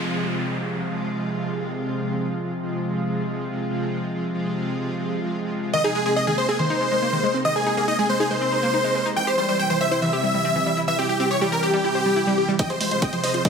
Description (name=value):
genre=uplifting trance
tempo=140 BPM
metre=4/4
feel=straight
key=F minor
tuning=A4 = 440 Hz
part: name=downlifter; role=sound effects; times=0.0-2.3 s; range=none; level=-33 LUFS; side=equal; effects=none
part: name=lush unison pad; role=sustained chords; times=0.1-13.5 s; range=C3 to F4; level=-26 LUFS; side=right 1 dB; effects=chorus, sidechain pumping
part: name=big supersaw lead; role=melody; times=5.7-13.5 s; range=G4 to G5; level=-22 LUFS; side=equal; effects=sidechain pumping, digital delay
part: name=plucky unison lead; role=second line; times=5.7-12.5 s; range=G4 to G5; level=-27 LUFS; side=left 1 dB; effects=cassette tape, sidechain pumping, digital delay
part: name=analog pluck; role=arpeggios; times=5.7-13.5 s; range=Eb3 to C5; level=-27 LUFS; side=left 2 dB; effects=chorus, sidechain pumping, digital delay
part: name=electronic hi-hat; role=drums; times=12.6-13.5 s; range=none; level=-28 LUFS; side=right 3 dB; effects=none
part: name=electronic kick drum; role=drums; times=12.6-13.5 s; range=none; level=-22 LUFS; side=equal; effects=high-pass filter on kick, high-pass filter on room
part: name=tight sequencer bass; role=bass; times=12.7-13.4 s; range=none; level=barely audible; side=none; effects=none
room=moderate lush hall reverb, RT60 1.7 s, digital ambience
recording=none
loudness=-20 LUFS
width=side -6 dB against mid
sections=0.0-12.6 A section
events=none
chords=0.0 Fm; 5.7 Abadd9; 9.2 C; 12.6 Fm